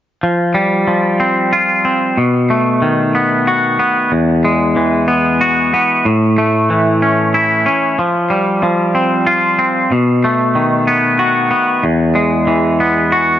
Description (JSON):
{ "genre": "rock", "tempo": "62 BPM (dotted quarters)", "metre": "6/8", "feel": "straight", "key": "unclear", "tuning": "A4 = 439 Hz", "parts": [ { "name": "twangy electric guitar", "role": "solo", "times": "0.2-13.4 s", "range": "E2 to F#4", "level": "-11 LUFS", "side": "equal", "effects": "digital delay" } ], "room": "light reverb", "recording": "dark, warm production, nothing above 7.5 kHz", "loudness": "-11 LUFS", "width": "side -11 dB against mid", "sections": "0.2-13.4 A section", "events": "none", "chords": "0.2 Fsus2; 2.2 B7; 4.1 Eadd9; 6.0 A; 8.0 Fsus2; 9.9 B7; 11.8 Eadd9", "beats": "| 0.22 1.20 | 2.17 3.14 | 4.11 5.08 | 6.05 7.02 | 7.99 8.95 | 9.92 10.88 | 11.85 12.81" }